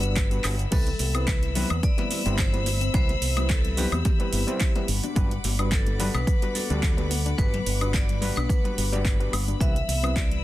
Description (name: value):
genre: nu-disco, nu disco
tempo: 108 BPM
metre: 4/4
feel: swing 54% on 16ths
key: G major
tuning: A4 = 440 Hz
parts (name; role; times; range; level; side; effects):
- vibraphone with hard mallets; melody; 0.0-10.4 s; G4 to E5; -34 LUFS; equal; dub echo
- overdriven reed electric piano; accompaniment; 0.0-10.4 s; G3 to D5; -32 LUFS; equal; fast tremolo, dub echo
- warm chamber string section; sustained chords; 0.0-10.4 s; E5 to E6; -35 LUFS; left 6 dB; sidechain pumping
- fingered electric bass with an envelope filter; bass; 0.0-10.4 s; G1 to E2; -27 LUFS; equal; none
- pop drum kit; drums; 0.0-10.4 s; cabasa, crash cymbal, handclaps, hi-hat, woodblock; -31 LUFS; right 1 dB; overdrive
- electronic kick drum; drums; 0.2-10.3 s; none; -24 LUFS; equal; overdrive
- soft round pluck; arpeggios; 0.7-10.4 s; E3 to D4; -36 LUFS; left 5 dB; chorus, sidechain pumping, dub echo
- congas; percussion; 1.0-10.3 s; none; -36 LUFS; left 4 dB; none
room: digital ambience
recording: dense, heavily limited modern master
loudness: -22 LUFS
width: side -15 dB against mid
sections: 0.0-10.4 A section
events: drum fill 0.4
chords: 0.0 Gmaj7; 0.7 Cmaj7; 4.9 Gmaj7; 9.6 Cmaj7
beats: 0.16 | 0.72 1.27 1.83 2.38 | 2.94 3.50 4.05 4.61 | 5.16 5.72 6.27 6.83 | 7.38 7.94 8.50 9.05 | 9.61 10.16